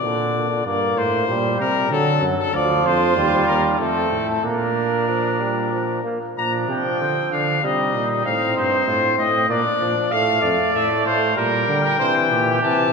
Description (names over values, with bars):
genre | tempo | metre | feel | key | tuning
classical, imitative canzona for brass ensemble | 96 BPM | 3/4 | straight | Bb major | A4 = 440 Hz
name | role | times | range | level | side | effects
clear trumpet | melody | 0.0-12.9 s | A4 to Bb5 | -22 LUFS | left 6 dB | none
brilliant trombone | accompaniment | 0.0-12.9 s | D3 to C4 | -23 LUFS | right 2 dB | none
warm bass trombone | bass | 0.0-12.9 s | D2 to D3 | -25 LUFS | right 2 dB | none
clear trumpet | second line | 2.5-12.9 s | C4 to F5 | -24 LUFS | right 4 dB | none
room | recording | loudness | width
wet concert hall reverb, RT60 1.9 s | minimal, uncompressed stereo recording | -17 LUFS | side -4 dB against mid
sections
0.0-6.4 A section; 6.4-12.9 B section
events
none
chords
0.0 Bb; 0.7 Gm; 1.9 D; 2.5 Dm7; 3.2 Cm/Eb; 3.8 F; 4.4 Bb; 7.6 Cm; 8.3 F; 9.5 Bb; 10.1 F; 11.4 Gm/Bb; 12.0 C